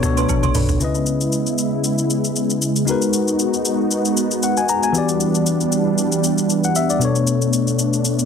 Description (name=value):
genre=amapiano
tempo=116 BPM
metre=4/4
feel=swing 55% on 16ths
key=unclear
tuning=A4 = 441 Hz
part: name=tine electric piano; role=accompaniment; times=0.0-8.3 s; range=B2 to A#5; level=-20 LUFS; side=left 4 dB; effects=none
part: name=warm analog pad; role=sustained chords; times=0.0-8.3 s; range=C#3 to F#4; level=-20 LUFS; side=right 2 dB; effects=chorus, sidechain pumping
part: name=deep log drum bass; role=bass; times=0.0-0.8 s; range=A1 to C#2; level=-21 LUFS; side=right 1 dB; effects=none
part: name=afro-pop drum kit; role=drums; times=0.0-8.3 s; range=hi-hat, kick drum, rim click, shaker, toms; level=-24 LUFS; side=left 1 dB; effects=none
part: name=deep mellow chord stab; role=stabs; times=0.2-0.7 s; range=D4 to B4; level=-30 LUFS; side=right 7 dB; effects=chorus, ping-pong delay
part: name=agogo bells and woodblock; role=percussion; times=0.2-0.5 s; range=none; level=-28 LUFS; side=right 13 dB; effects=none
room=light reverb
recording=dense, heavily limited modern master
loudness=-16 LUFS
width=side -7 dB against mid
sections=0.8-8.3 A section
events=drum fill 0.3-0.8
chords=0.0 Bm7; 0.8 C#m7; 2.9 G#m7; 4.9 Em7; 7.0 Bm7